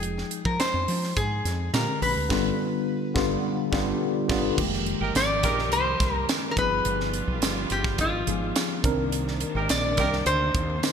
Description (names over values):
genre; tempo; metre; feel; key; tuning
polished 1980s jazz-funk pop; 106 BPM; 4/4; straight; unclear; A4 = 440 Hz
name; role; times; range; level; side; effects
lap resonator guitar; melody; 0.0-10.9 s; F4 to D5; -27 LUFS; left 1 dB; ping-pong delay
tine electric piano; accompaniment; 0.0-10.9 s; C3 to G5; -29 LUFS; left 2 dB; slow stereo tremolo, lush chorus
woody fretless electric bass; bass; 0.0-10.8 s; F1 to F3; -30 LUFS; equal; none
crisp fusion drum kit; drums; 0.0-10.9 s; crash cymbal, hi-hat, kick drum, snare drum; -29 LUFS; right 1 dB; gated reverb
tambourine; percussion; 0.6-10.9 s; none; -38 LUFS; right 12 dB; none
rich studio string section; sustained chords; 4.6-10.9 s; C3 to Bb4; -34 LUFS; right 2 dB; none
warm horn section; second line; 5.0-5.6, 9.6-10.2 s; Eb4 to Bb4; -31 LUFS; right 4 dB; none
room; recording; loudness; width
light reverb, studio reverb; bright 1980s-style digital production; -23 LUFS; side -7 dB against mid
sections
0.0-4.6 A section; 4.6-10.9 B section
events
band accent 2.3-4.6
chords
0.0 Fm9; 1.7 Bb13; 2.3 G7; 4.6 Fm11; 6.6 G7b9b13; 8.8 Cm9